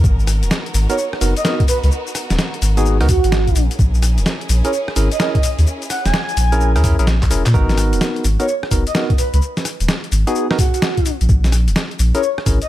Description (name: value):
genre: UK garage, two-step garage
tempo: 128 BPM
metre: 4/4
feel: swing 65% on 16ths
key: G# minor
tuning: A4 = 440 Hz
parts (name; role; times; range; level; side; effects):
- warm symphonic violin section; sustained chords; 0.0-7.5 s; B3 to A#4; -31 LUFS; equal; sidechain pumping
- soft dub sub bass; bass; 0.0-12.6 s; D#1 to A#2; -15 LUFS; equal; none
- boom bap sampler-style drum kit; drums; 0.0-12.7 s; handclaps, hi-hat, rim click, shaker, snare drum; -22 LUFS; left 1 dB; none
- electronic kick drum; drums; 0.0-12.6 s; none; -16 LUFS; equal; none
- breathy flute-like synth lead; melody; 0.9-12.7 s; F#4 to G#5; -22 LUFS; right 2 dB; tremolo, analog chorus, digital delay
- barky tine electric piano; stabs; 0.9-12.6 s; B3 to A#4; -22 LUFS; equal; medium stereo tremolo, digital delay
room: digital ambience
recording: none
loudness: -14 LUFS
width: side -14 dB against mid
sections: 0.0-7.5 A section; 7.5-12.7 A section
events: drop 0.0-7.5, 7.5-12.7; drum fill 7.2-7.5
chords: 0.0 G#m7; 3.6 A#m7b5; 7.5 G#m7; 11.1 A#7(b5, no3)